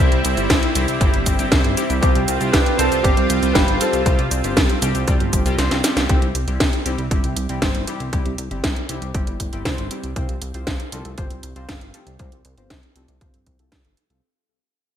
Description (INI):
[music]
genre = italo disco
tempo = 118 BPM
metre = 4/4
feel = straight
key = unclear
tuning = A4 = 439 Hz
[part]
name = dark concert grand piano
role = melody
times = 0.0-5.5 s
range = C4 to C5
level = -23 LUFS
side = equal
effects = lush chorus, ping-pong delay
[part]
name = lush unison pad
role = sustained chords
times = 0.0-6.1 s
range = G3 to F4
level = -24 LUFS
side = right 2 dB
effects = chorus
[part]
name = chorused polysynth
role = stabs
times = 0.0-14.2 s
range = G3 to F5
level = -26 LUFS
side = left 2 dB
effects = ping-pong delay
[part]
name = chorused synth bass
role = bass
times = 0.0-14.2 s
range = G1 to C2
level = -24 LUFS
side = equal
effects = none
[part]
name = house drum kit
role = drums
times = 0.1-14.2 s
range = cabasa, hi-hat, snare drum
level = -23 LUFS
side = right 1 dB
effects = overdrive, gated reverb
[part]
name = electronic kick drum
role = drums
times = 0.5-13.8 s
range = none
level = -20 LUFS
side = equal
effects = overdrive
[sound]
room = light reverb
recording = bright 1980s-style digital production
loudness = -17 LUFS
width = side -9 dB against mid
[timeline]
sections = 0.0-6.1 A section; 6.1-14.2 B section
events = kick drops out 5.6-6.1; drum fill 5.6-6.1; fade-out 6.1-14.2; filter sweep on analog polysynth 6.1-14.2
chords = 0.0 C; 2.0 Fsus2; 6.1 C; 10.2 Fsus2